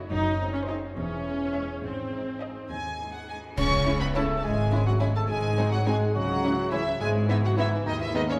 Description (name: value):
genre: cinematic, playful, whimsical film cue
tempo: 70 BPM (dotted quarters)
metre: 6/8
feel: straight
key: C# minor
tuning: A4 = 445 Hz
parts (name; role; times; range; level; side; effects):
- warm studio violin section; melody; 0.0-8.4 s; C#5 to C#6; -34 LUFS; equal; none
- warm studio violin section; second line; 0.0-8.2 s; B3 to G#5; -36 LUFS; equal; none
- concert harp; arpeggios; 0.0-8.4 s; E2 to D#5; -38 LUFS; equal; none
- rich symphonic viola section; accompaniment; 0.1-8.2 s; D#3 to D#4; -36 LUFS; equal; none
- rich studio double bass section; bass; 0.1-8.4 s; E1 to D#2; -34 LUFS; equal; none
- warm studio cello section; bass; 0.1-8.4 s; D#2 to C#3; -33 LUFS; equal; none
- cymbal swell, clash cymbals and concert bass drum; percussion; 0.1-4.7 s; none; -39 LUFS; equal; none
- warm French horn section; sustained chords; 0.4-8.4 s; C#3 to D#4; -36 LUFS; equal; none
- dark clarinet; second line; 3.6-8.4 s; C#4 to C#5; -35 LUFS; equal; none
room: wet scoring stage reverb, RT60 2.1 s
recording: none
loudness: -27 LUFS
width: mono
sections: 0.0-3.6 A section; 3.6-8.4 B section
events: band accent 3.6-4.1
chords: 0.1 G#7/F#; 1.0 C#m/E; 1.8 G#; 3.6 C#m; 5.3 G#7; 6.1 C#m; 7.0 G#5